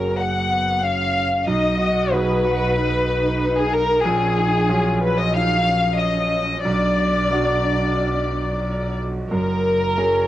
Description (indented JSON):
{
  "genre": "neoclassical piano and strings",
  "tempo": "92 BPM",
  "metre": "4/4",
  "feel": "rubato",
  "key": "F# major",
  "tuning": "A4 = 440 Hz",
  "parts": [
    { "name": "muted chamber violin section", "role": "melody", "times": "0.0-10.3 s", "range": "G#4 to F#5", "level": "-20 LUFS", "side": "left 2 dB", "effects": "none" },
    { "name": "muted cello", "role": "second line", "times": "0.0-9.0 s", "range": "A#3 to G#4", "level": "-29 LUFS", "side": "right 5 dB", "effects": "cassette tape" },
    { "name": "bright concert grand piano", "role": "accompaniment", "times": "0.0-10.3 s", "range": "A#1 to G#4", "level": "-24 LUFS", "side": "right 2 dB", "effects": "cassette tape" },
    { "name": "muted double bass", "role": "bass", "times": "0.0-10.3 s", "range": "F#1 to B1", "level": "-25 LUFS", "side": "equal", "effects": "none" }
  ],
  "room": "light reverb, small room ambience",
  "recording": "home recording on cassette",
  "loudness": "-18 LUFS",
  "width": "side -13 dB against mid",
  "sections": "0.0-10.3 A section",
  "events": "none",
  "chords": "0.0 F#add9; 1.5 B; 4.1 F#add9/A#; 6.7 Bm; 9.3 F#add9"
}